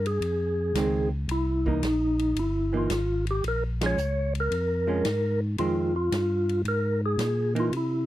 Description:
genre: soul jazz organ trio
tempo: 112 BPM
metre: 4/4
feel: swing 69% on 8ths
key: F minor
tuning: A4 = 440 Hz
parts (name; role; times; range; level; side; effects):
- percussive tonewheel organ; melody; 0.0-8.1 s; D#4 to Db5; -27 LUFS; equal; fast rotary speaker
- tonewheel organ; bass; 0.0-8.1 s; G1 to C3; -28 LUFS; equal; slow rotary speaker
- swinging big-band drum kit; drums; 0.1-7.9 s; hi-hat, kick drum, ride cymbal, snare drum; -35 LUFS; equal; none
- hollow-body jazz guitar; accompaniment; 0.8-7.7 s; Eb3 to D#4; -28 LUFS; right 4 dB; none
room: light reverb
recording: dry, close 1970s-style studio recording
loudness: -24 LUFS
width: side -14 dB against mid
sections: 0.0-8.1 A section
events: band accent 3.7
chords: 0.0 Fm7; 1.3 C7#9; 3.4 Bbm7; 5.6 Fm7

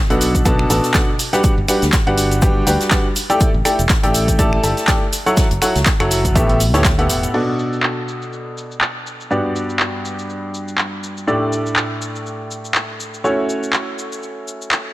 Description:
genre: piano house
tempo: 122 BPM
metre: 4/4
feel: swing 56% on 16ths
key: B minor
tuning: A4 = 440 Hz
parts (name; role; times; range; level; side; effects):
- bright grand piano; riff; 0.1-14.9 s; G2 to A5; -19 LUFS; equal; sidechain pumping, low-pass filter, digital delay
- modern bright fingered electric bass; bass; 0.1-7.3 s; E1 to D2; -19 LUFS; equal; sidechain pumping
- natural country drum kit; drums; 0.1-7.2 s; hi-hat, shaker, snare drum; -30 LUFS; left 2 dB; sidechain pumping on hats, high-pass filter on hats, high-pass filter on snare, sidechain pumping on perc, high-pass filter on perc, high-pass filter on room
- punchy analog drum machine; drums; 0.1-14.8 s; crash cymbal, finger snaps, handclaps, hi-hat, shaker; -21 LUFS; equal; low-pass filter on snare, low-pass filter on hats, low-pass filter on perc, low-pass filter on cymbals
- electronic kick drum; drums; 0.3-7.0 s; none; -17 LUFS; equal; none
room: light reverb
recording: none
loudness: -15 LUFS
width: side -17 dB against mid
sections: 0.0-7.3 A section; 7.3-14.9 B section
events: filter sweep on grand piano 7.3-14.9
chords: 0.0 Bm7; 1.4 Gmaj7; 3.4 A7sus4; 5.4 F#m7; 6.4 A9sus4; 7.3 Bm7; 9.3 Gmaj7; 11.3 A7sus4; 13.2 F#m7

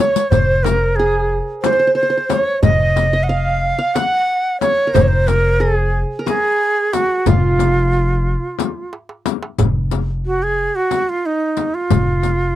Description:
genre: Turkish makam ensemble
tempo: 181 BPM (eighths)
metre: 7/8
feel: straight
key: F makam kurdi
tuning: A4 = 443 Hz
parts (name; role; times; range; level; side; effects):
- breathy bright ney; melody; 0.0-12.6 s; Eb4 to Gb5; -17 LUFS; right 1 dB; none
- qanun; second line; 0.0-8.9 s; F4 to Gb5; -21 LUFS; right 3 dB; none
- riq; percussion; 0.0-12.4 s; none; -26 LUFS; left 17 dB; none
- upright bass; bass; 0.3-12.6 s; F1; -18 LUFS; equal; none
- darbuka; percussion; 0.3-12.1 s; none; -21 LUFS; right 2 dB; none
- frame drum; percussion; 0.3-12.4 s; none; -22 LUFS; left 10 dB; none
room: light reverb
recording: dry, close 1970s-style studio recording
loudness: -14 LUFS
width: side -13 dB against mid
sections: 0.0-9.6 A section; 9.6-12.6 B section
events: drum fill 0.0-0.3, 8.9-9.6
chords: none

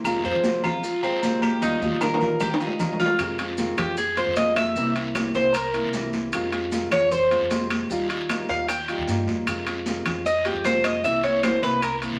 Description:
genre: latin, Cuban son and guajira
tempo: 153 BPM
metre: 4/4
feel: straight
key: F minor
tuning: A4 = 441 Hz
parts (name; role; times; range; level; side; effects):
- nylon-string guitar; accompaniment; 0.0-12.2 s; C3 to F4; -31 LUFS; equal; none
- upright bass; bass; 0.0-12.2 s; C2 to F3; -38 LUFS; equal; none
- agogo bells and timbales; percussion; 0.0-12.2 s; none; -33 LUFS; equal; none
- congas; percussion; 0.0-12.2 s; none; -32 LUFS; equal; none
- guiro; percussion; 0.0-12.2 s; none; -39 LUFS; equal; none
- claves; percussion; 0.1-12.0 s; none; -37 LUFS; equal; none
- maracas; percussion; 0.1-12.2 s; none; -43 LUFS; equal; none
- Cuban tres; arpeggios; 0.2-11.9 s; C4 to G5; -26 LUFS; equal; none
room: wet studio reverb, RT60 0.8 s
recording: vinyl crackle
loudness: -24 LUFS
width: mono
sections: 0.0-3.2 A section; 3.2-12.2 B section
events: drum fill 1.6-3.2; Cuban tres solo 3.2-12.2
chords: 0.1 Fm7; 1.6 Ebadd9; 3.2 Fm7; 4.8 C7; 6.3 Fm7; 7.9 Ebadd9; 9.5 Fm7; 11.0 C7

